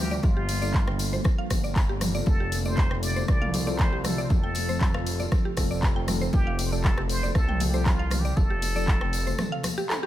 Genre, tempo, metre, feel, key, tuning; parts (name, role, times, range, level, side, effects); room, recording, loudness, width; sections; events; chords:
afro house; 118 BPM; 4/4; straight; A4 = 440 Hz
trumpet with plunger mute; melody; 0.0-9.9 s; F4 to D5; -34 LUFS; equal; ping-pong delay
ethereal airy pad; sustained chords; 0.0-10.1 s; C3 to F4; -36 LUFS; equal; ensemble chorus, built-in reverb, sidechain pumping
smooth synth bass; bass; 0.0-9.3 s; F1 to D2; -29 LUFS; equal; sidechain pumping
mallet-like synth pluck; arpeggios; 0.1-10.1 s; G4 to G5; -36 LUFS; right 1 dB; chorus, sidechain pumping, ping-pong delay
tambourine; percussion; 0.1-10.0 s; -39 LUFS; left 4 dB
electronic kick drum; drums; 0.2-9.0 s; -24 LUFS; equal
congas; percussion; 0.2-9.9 s; -34 LUFS; left 3 dB
deep house drum kit; drums; 0.5-10.1 s; handclaps, hi-hat, rim click, toms; -32 LUFS; equal
mellow tine electric piano; stabs; 0.6-9.6 s; F3 to A4; -35 LUFS; left 2 dB; medium stereo tremolo, sidechain pumping, ping-pong delay
digital ambience; -22 LUFS; side -13 dB against mid
0.0-10.1 A section
break 9.4-10.1; drum fill 9.9
0.0 Gm7; 2.3 F